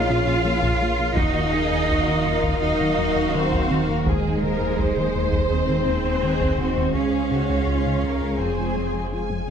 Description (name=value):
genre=cinematic, hybrid orchestral and electronic film score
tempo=83 BPM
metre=4/4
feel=straight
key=unclear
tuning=A4 = 440 Hz
part: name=warm symphonic violin section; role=melody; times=0.0-9.5 s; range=C5 to Ab5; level=-32 LUFS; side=left 2 dB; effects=none
part: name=dark symphonic violin section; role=second line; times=0.0-9.5 s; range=Db4 to C5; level=-30 LUFS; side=left 1 dB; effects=none
part: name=rich studio viola section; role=accompaniment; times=0.0-9.1 s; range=Ab4 to F5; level=-29 LUFS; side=equal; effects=none
part: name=clear French horn section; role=sustained chords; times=0.0-9.5 s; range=Eb4 to Db5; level=-30 LUFS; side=left 5 dB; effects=none
part: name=glassy FM pad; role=sustained chords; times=0.0-9.5 s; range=F3 to F5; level=-30 LUFS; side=equal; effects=ensemble chorus, built-in reverb
part: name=dark studio double bass section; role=bass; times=0.0-9.5 s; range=Bb1 to F2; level=-29 LUFS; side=right 5 dB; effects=none
part: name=rich symphonic cello section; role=bass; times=0.0-9.1 s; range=Ab3 to F4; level=-26 LUFS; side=right 3 dB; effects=none
part: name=sub bass with octave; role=bass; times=0.0-9.5 s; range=Eb1 to Db2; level=-31 LUFS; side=equal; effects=none
part: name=smooth gliding synth bass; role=riff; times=0.1-9.5 s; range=Db2 to Bb3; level=-28 LUFS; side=left 2 dB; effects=none
part: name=solo taiko drums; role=drums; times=0.6-7.1 s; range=none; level=-28 LUFS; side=equal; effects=none
room=light reverb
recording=close, detailed microphones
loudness=-19 LUFS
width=side -7 dB against mid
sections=0.0-9.5 A section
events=none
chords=0.0 Bbm; 1.2 Ebmadd9; 4.1 Ab/Eb; 7.0 Db; 8.4 Fm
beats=0.45 | 1.17 1.89 2.62 3.34 | 4.06 4.78 5.51 6.23 | 6.95 7.67 8.40 9.12